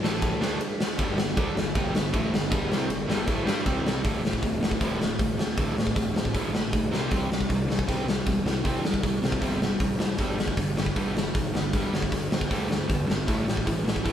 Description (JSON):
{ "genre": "punk rock", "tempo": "156 BPM", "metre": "4/4", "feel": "straight", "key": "unclear", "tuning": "A4 = 440 Hz", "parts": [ { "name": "distorted electric guitar", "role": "riff", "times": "0.0-14.1 s", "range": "D2 to G4", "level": "-29 LUFS", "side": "equal", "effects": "distortion" }, { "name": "fuzz picked electric bass", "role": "bass", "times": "0.0-14.1 s", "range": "D1 to G2", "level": "-33 LUFS", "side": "equal", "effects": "overdrive" }, { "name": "big rock drum kit", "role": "drums", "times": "0.0-14.1 s", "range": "hi-hat, kick drum, ride cymbal, snare drum", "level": "-26 LUFS", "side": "equal", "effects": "none" } ], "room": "light reverb", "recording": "band playing live in one room", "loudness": "-24 LUFS", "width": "side -10 dB against mid", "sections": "0.0-4.0 A section; 4.0-14.1 B section", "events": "none", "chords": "0.0 A5; 1.0 G5; 3.7 C5; 4.0 D5; 6.9 C5; 10.2 G5; 13.3 A5" }